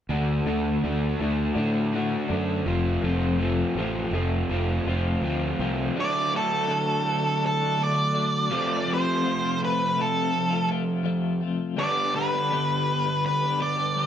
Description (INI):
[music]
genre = rock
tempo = 82 BPM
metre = 4/4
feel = straight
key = unclear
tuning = A4 = 440 Hz
[part]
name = twelve-string electric guitar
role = arpeggios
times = 0.1-14.1 s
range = F2 to G4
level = -30 LUFS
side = left 5 dB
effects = tremolo
[part]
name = crunchy overdriven guitar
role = riff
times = 0.1-14.1 s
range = F2 to F#4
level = -27 LUFS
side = right 1 dB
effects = none
[part]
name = growling fingered electric bass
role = bass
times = 0.1-5.9 s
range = F1 to A2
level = -27 LUFS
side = equal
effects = overdrive
[part]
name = octave-fuzz lead guitar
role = melody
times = 6.0-14.1 s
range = A4 to D5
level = -25 LUFS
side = right 1 dB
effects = distortion
[sound]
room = moderate large studio reverb, RT60 1.1 s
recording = band playing live in one room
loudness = -22 LUFS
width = side -9 dB against mid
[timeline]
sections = 0.1-6.0 A section; 6.0-14.1 B section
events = none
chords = 0.1 D; 2.7 F; 6.0 D; 8.5 F; 11.8 G